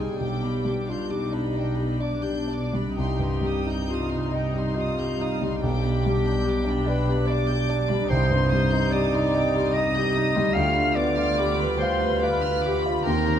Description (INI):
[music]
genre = classical, romantic movement for piano and orchestra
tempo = 59-75 BPM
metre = 3/4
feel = rubato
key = unclear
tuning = A4 = 440 Hz
[part]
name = warm concert grand piano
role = melody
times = 0.0-13.4 s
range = B1 to F5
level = -25 LUFS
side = left 1 dB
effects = none
[part]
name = warm studio violin section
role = melody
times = 0.0-13.4 s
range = D5 to F6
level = -36 LUFS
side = left 4 dB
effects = none
[part]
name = dark clarinet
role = second line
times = 0.0-13.4 s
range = D4 to F5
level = -28 LUFS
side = equal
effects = none
[part]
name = warm chamber violin section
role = second line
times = 0.0-13.4 s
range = G5 to G6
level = -36 LUFS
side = equal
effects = none
[part]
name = warm studio viola section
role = accompaniment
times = 0.0-13.4 s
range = G3 to G4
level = -33 LUFS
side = right 1 dB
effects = none
[part]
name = dark symphonic double bass section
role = bass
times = 0.0-13.4 s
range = B1 to Eb2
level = -31 LUFS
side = right 2 dB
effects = none
[part]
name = warm studio cello section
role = bass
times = 0.0-13.4 s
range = D2 to C3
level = -30 LUFS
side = right 1 dB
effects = none
[part]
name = timpani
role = percussion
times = 8.1-9.3 s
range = C3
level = -32 LUFS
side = equal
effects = none
[sound]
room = light reverb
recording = close, detailed microphones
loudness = -22 LUFS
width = side -9 dB against mid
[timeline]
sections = 0.0-13.4 A section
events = none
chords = 0.2 G/B; 3.0 Cm; 5.6 G/B; 8.1 Cm; 10.5 G7/D